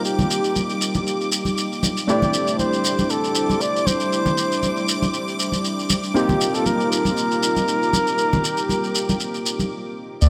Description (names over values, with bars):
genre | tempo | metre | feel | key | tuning
deep house | 118 BPM | 4/4 | swing 54% on 16ths | unclear | A4 = 440 Hz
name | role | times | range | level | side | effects
trumpet with bucket mute | melody | 0.0-10.3 s | G4 to D5 | -26 LUFS | equal | tape echo
warm analog pad | sustained chords | 0.0-10.3 s | G3 to G5 | -29 LUFS | equal | lush chorus
warm analog keys | stabs | 0.0-10.2 s | A3 to G4 | -28 LUFS | equal | chorus, analog delay
shekere | percussion | 0.0-10.3 s | none | -28 LUFS | equal | none
string machine, violins | texture | 0.0-9.7 s | D6 | -34 LUFS | equal | ensemble chorus
congas | percussion | 0.2-9.7 s | none | -27 LUFS | equal | none
round analog bass | bass | 10.2-10.3 s | D2 | -12 LUFS | equal | tube saturation
room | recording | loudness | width
moderate lush hall reverb, RT60 2.1 s | none | -21 LUFS | mono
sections
0.0-10.2 A section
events
filter sweep on analog synth pad 0.0-10.2; break 9.7-10.2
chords
0.0 F9sus4; 2.1 D9sus4; 6.2 F9sus4